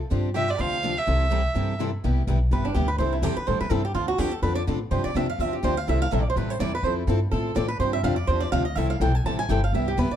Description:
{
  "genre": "acoustic string swing (jazz manouche)",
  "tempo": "249 BPM",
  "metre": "4/4",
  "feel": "swing 56% on 8ths",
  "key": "C major",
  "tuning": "A4 = 440 Hz",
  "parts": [
    { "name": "picked steel-string acoustic guitar", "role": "accompaniment", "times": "0.1-10.1 s", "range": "C3 to A4", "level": "-29 LUFS", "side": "left 8 dB", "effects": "none" },
    { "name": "picked steel-string acoustic guitar", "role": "accompaniment", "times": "0.1-10.1 s", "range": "C3 to A4", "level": "-32 LUFS", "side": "right 7 dB", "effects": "none" },
    { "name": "upright bass", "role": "bass", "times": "0.1-10.1 s", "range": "G1 to A2", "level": "-25 LUFS", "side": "equal", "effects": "none" },
    { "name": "picked swing-style acoustic guitar", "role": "second line", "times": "0.3-10.2 s", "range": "D4 to A5", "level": "-28 LUFS", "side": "right 4 dB", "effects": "none" },
    { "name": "warm violin", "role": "melody", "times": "0.4-1.8 s", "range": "D5 to F5", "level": "-26 LUFS", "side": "right 3 dB", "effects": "none" }
  ],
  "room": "light reverb",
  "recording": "dark, warm production",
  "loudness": "-22 LUFS",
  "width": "side -10 dB against mid",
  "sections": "0.0-2.0 A section; 2.0-9.7 B section",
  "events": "steel-string acoustic guitar solo 2.0-10.2",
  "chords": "0.1 G7sus4; 1.1 C6; 2.0 Cmaj7; 3.0 Am7/C; 4.0 Dm7; 4.9 G7sus4; 5.9 C6; 6.8 Fmaj9; 7.8 G7sus4; 8.8 C6",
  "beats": "| 0.11 0.35 0.59 0.83 | 1.07 1.31 1.55 1.79 | 2.03 2.27 2.51 2.75 | 2.99 3.23 3.48 3.72 | 3.96 4.20 4.44 4.68 | 4.92 5.16 5.40 5.64 | 5.88 6.12 6.36 6.61 | 6.85 7.09 7.33 7.57 | 7.81 8.05 8.29 8.53 | 8.77 9.01 9.25 9.49 | 9.74 9.98"
}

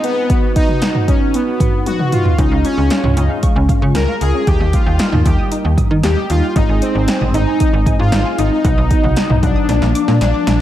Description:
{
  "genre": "synth-pop",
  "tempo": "115 BPM",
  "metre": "4/4",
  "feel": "straight",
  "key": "unclear",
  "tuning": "A4 = 440 Hz",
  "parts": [
    { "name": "analog synth brass", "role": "melody", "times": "0.0-10.6 s", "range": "Cb4 to Bb4", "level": "-19 LUFS", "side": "left 3 dB", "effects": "chorus, tape echo" },
    { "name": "mellow synth brass", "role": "accompaniment", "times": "0.0-10.6 s", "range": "F3 to Ab4", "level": "-22 LUFS", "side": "right 1 dB", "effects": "chorus, phaser" },
    { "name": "deep house drum kit", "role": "drums", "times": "0.0-10.6 s", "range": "hi-hat, kick drum, snare drum, toms", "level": "-16 LUFS", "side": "equal", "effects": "overdrive" },
    { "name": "wide unison pluck", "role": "arpeggios", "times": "2.4-10.6 s", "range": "Db4 to Eb6", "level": "-26 LUFS", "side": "right 1 dB", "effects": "ensemble chorus, tape echo" },
    { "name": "slap-like FM bass", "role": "bass", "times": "2.4-10.6 s", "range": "Ab1 to Eb3", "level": "-16 LUFS", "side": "equal", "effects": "none" }
  ],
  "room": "moderate plate reverb, RT60 1.8 s, digital ambience",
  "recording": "dreamy mix soaked in reverb",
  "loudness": "-12 LUFS",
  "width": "side -12 dB against mid",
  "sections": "0.0-10.6 A section",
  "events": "drum fill 1.9-2.4, 9.7-10.6",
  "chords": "0.3 B; 2.4 Db; 4.5 Eb; 6.6 Ab; 8.6 B; 9.7 Bb",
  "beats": "| 0.30 0.82 1.34 1.86 | 2.38 2.91 3.43 3.95 | 4.47 4.99 5.52 6.04 | 6.56 7.08 7.60 8.12 | 8.65 9.17 9.69 10.21"
}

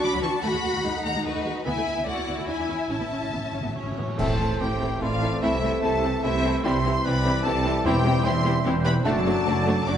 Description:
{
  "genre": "classical, dramatic, fast romantic movement for symphony orchestra",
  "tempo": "147 BPM",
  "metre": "3/4",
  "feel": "rubato",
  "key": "A major, A minor from 4.2 s",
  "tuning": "A4 = 440 Hz",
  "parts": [
    { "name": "warm symphonic violin section", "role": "melody", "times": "0.0-10.0 s", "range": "B4 to D6", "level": "-31 LUFS", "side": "left 5 dB", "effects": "none" },
    { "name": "dark studio violin section", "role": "second line", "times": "0.0-10.0 s", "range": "D4 to B5", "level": "-33 LUFS", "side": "left 3 dB", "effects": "none" },
    { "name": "rich symphonic viola section", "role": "accompaniment", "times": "0.0-9.9 s", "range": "E3 to F#4", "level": "-30 LUFS", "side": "equal", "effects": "none" },
    { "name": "warm symphonic cello section", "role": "bass", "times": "0.0-10.0 s", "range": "E2 to F#4", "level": "-30 LUFS", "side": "right 1 dB", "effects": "none" },
    { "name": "warm symphonic double bass section", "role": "bass", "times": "0.0-10.0 s", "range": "E1 to E2", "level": "-29 LUFS", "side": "right 2 dB", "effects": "none" },
    { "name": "cymbal swell, clash cymbals and concert bass drum", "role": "percussion", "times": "1.7-5.0 s", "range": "none", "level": "-35 LUFS", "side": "equal", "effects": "none" },
    { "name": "timpani", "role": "percussion", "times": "2.9-4.8, 7.9-8.4 s", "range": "E2 to A2", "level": "-32 LUFS", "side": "left 1 dB", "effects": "none" },
    { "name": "mellow cor anglais", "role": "second line", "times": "3.8-10.0 s", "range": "C#4 to D5", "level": "-31 LUFS", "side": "right 2 dB", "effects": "none" },
    { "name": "flute section", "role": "second line", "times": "4.2-10.0 s", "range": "C5 to E5", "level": "-32 LUFS", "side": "right 1 dB", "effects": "none" },
    { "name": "warm clarinet", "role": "second line", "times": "4.2-9.2 s", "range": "C4 to E4", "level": "-34 LUFS", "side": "left 1 dB", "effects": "none" },
    { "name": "mellow bassoon", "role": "accompaniment", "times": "4.2-9.2 s", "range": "G3 to C4", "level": "-34 LUFS", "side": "right 2 dB", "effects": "none" },
    { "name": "clear trombone section", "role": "sustained chords", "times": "4.2-10.0 s", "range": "D3 to A3", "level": "-32 LUFS", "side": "right 3 dB", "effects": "none" },
    { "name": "dark French horn section", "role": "sustained chords", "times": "4.2-10.0 s", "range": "A3 to A4", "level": "-31 LUFS", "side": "left 4 dB", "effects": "none" }
  ],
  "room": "moderate scoring stage reverb, RT60 2.1 s",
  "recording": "nothing above 11.0 kHz",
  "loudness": "-22 LUFS",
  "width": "side -9 dB against mid",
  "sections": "0.0-4.2 A section; 4.2-10.0 B section",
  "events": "timpani fill 2.9-4.2; band accent 4.2-4.6",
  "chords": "0.4 B7/D#; 1.7 E7/D; 2.5 E; 2.9 A; 4.2 Am; 5.4 Am/C; 6.7 C; 7.9 C/E; 9.1 D/F#",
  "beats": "0.04 | 0.44 0.85 1.26 | 1.67 2.07 2.48 | 2.90 3.33 3.76 | 4.19 4.61 5.02 | 5.43 5.83 6.24 | 6.65 7.06 7.46 | 7.86 8.25 8.65 | 9.05 9.46 9.87"
}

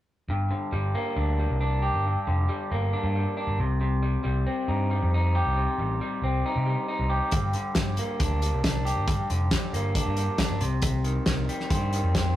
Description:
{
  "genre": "quiet-loud alternative rock",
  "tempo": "137 BPM",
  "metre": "4/4",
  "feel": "straight",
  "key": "G minor",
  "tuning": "A4 = 440 Hz",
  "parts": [
    { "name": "electric guitar through a small old amp", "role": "arpeggios", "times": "0.3-12.4 s", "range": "G2 to G4", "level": "-28 LUFS", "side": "equal", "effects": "none" },
    { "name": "overdriven picked electric bass", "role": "bass", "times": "0.3-12.4 s", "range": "F1 to C3", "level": "-26 LUFS", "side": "equal", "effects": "none" },
    { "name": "loose indie drum kit", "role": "drums", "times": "7.3-12.2 s", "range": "hi-hat, kick drum, snare drum", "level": "-27 LUFS", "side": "equal", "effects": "none" }
  ],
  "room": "light reverb",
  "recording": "rough rehearsal-room recording",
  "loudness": "-24 LUFS",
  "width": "side -13 dB against mid",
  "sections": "0.3-12.4 A section",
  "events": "none",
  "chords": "0.3 Gm; 3.6 Cm; 7.3 Gm; 10.6 Cm",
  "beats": "| 0.29 0.73 1.17 1.60 | 2.04 2.48 2.92 3.36 | 3.80 4.24 4.68 5.12 | 5.56 6.00 6.44 6.88 | 7.32 7.75 8.19 8.63 | 9.07 9.51 9.95 10.39 | 10.83 11.27 11.71 12.15"
}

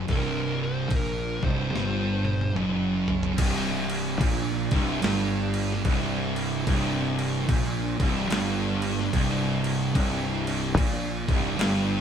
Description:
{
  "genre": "stoner and doom metal",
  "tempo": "73 BPM",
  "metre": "4/4",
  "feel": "swing 62% on 8ths",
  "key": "unclear",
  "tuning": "A4 = 439 Hz",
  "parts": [
    { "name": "thick fuzz guitar", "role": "riff", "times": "0.0-12.0 s", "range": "C2 to Bb2", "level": "-31 LUFS", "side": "left 4 dB", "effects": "distortion" },
    { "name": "thick fuzz guitar", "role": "riff", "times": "0.0-12.0 s", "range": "C2 to Bb2", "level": "-29 LUFS", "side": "right 7 dB", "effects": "distortion" },
    { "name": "fuzz fingered electric bass", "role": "bass", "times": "0.0-12.0 s", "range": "C1 to Bb1", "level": "-31 LUFS", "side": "left 1 dB", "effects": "overdrive" },
    { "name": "fuzz lead guitar", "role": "melody", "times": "0.1-2.5 s", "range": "Bb4 to C5", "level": "-34 LUFS", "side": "equal", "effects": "distortion" },
    { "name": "boom bap sampler-style drum kit", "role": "drums", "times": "0.1-11.8 s", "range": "crash cymbal, kick drum, snare drum, toms", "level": "-29 LUFS", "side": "left 1 dB", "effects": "none" },
    { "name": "crunchy overdriven guitar", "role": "riff", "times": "3.4-12.0 s", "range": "C2 to Bb2", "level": "-32 LUFS", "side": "left 2 dB", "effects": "none" }
  ],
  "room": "moderate stone room reverb, RT60 1.1 s",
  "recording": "band playing live in one room",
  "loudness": "-23 LUFS",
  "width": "side -8 dB against mid",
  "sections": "0.0-3.4 A section; 3.4-12.0 B section",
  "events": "drum fill 1.7-3.4",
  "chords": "0.0 C5",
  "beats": "| 0.08 0.91 1.73 2.56 | 3.38 4.20 5.02 5.84 | 6.66 7.48 8.30 9.12 | 9.95 10.77 11.59"
}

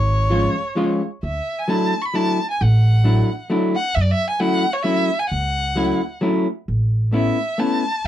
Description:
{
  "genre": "musette waltz",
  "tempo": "132 BPM",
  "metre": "3/4",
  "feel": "straight",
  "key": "F# minor",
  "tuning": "A4 = 441 Hz",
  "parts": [
    { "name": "warm violin", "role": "melody", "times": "0.0-8.1 s", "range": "C#5 to C#6", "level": "-23 LUFS", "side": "equal", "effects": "none" },
    { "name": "upright bass", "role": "bass", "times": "0.0-8.1 s", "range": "G#1 to F#2", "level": "-18 LUFS", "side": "right 1 dB", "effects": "none" },
    { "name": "vintage hollow-body jazz guitar", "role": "accompaniment", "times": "0.3-7.8 s", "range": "E#3 to E#4", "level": "-19 LUFS", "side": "left 1 dB", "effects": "none" }
  ],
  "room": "light reverb",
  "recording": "dry, close 1970s-style studio recording",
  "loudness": "-17 LUFS",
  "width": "side -11 dB against mid",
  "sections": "0.0-6.7 A section; 6.7-8.1 B section",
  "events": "none",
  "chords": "0.0 C#; 1.2 Dadd9; 4.0 F#m7; 6.7 Aadd9",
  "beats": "0.31 0.77 | 1.23 1.69 2.15 | 2.60 3.06 3.51 | 3.96 4.41 4.86 | 5.31 5.76 6.22 | 6.68 7.13 7.59 | 8.04"
}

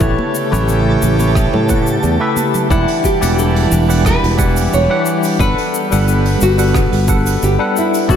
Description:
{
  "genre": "sunset chillout",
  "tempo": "89 BPM",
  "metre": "4/4",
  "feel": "straight",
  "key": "E dorian",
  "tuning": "A4 = 440 Hz",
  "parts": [
    { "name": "nylon-string guitar", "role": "melody", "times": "0.0-8.2 s", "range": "E4 to C#5", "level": "-20 LUFS", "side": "equal", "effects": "ping-pong delay, slapback echo" },
    { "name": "barky tine electric piano", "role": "accompaniment", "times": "0.0-8.2 s", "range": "E3 to F#5", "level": "-18 LUFS", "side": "moving between left 6 dB and right 4 dB", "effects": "overdrive, fast stereo tremolo, auto-pan, ping-pong delay, slapback echo" },
    { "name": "airy breathy pad", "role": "sustained chords", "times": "0.0-8.2 s", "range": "C#3 to A4", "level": "-20 LUFS", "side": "equal", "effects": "chorus" },
    { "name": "sustaining fretless electric bass", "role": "bass", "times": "0.0-8.2 s", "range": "E1 to A2", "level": "-15 LUFS", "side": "equal", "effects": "analog chorus" },
    { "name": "electronic kick drum", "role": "drums", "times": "0.0-8.2 s", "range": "none", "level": "-17 LUFS", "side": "equal", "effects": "none" },
    { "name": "soft brush drum kit", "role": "drums", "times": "0.0-8.2 s", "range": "hi-hat, rim click, shaker", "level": "-26 LUFS", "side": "equal", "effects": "none" },
    { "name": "twinkling granular texture", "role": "texture", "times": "0.0-2.7 s", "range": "A5", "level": "-28 LUFS", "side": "right 2 dB", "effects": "built-in reverb" },
    { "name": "congas", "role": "percussion", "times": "0.2-2.7 s", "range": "none", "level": "-26 LUFS", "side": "equal", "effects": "none" }
  ],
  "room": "moderate concert hall reverb, RT60 2.3 s",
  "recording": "big arena sound",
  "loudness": "-12 LUFS",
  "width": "side -8 dB against mid",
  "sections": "0.0-2.7 A section; 2.7-8.2 B section",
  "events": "none",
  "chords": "0.0 A7; 2.7 Em7; 5.4 Gmaj7",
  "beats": "| 0.01 0.68 1.35 2.03 | 2.70 3.38 4.05 4.72 | 5.40 6.07 6.75 7.42 | 8.10"
}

